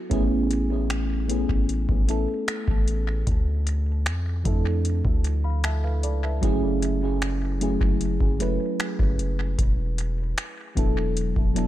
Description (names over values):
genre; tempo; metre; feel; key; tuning
contemporary R&B; 76 BPM; 4/4; straight; A major; A4 = 437 Hz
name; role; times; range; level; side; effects
mellow FM electric piano; accompaniment; 0.0-11.7 s; F3 to B5; -27 LUFS; equal; chorus, phaser, tape echo
long sustained 808-style bass; bass; 0.1-11.7 s; E1 to F2; -25 LUFS; equal; none
booming analog drum machine; drums; 0.1-11.7 s; finger snaps, hi-hat, kick drum; -25 LUFS; equal; tape echo
room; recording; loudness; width
digital ambience; echo-heavy mix; -22 LUFS; side -14 dB against mid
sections
0.0-11.7 A section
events
none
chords
0.1 Amaj9; 3.3 Dmadd9; 6.4 F#m9; 9.6 E9sus4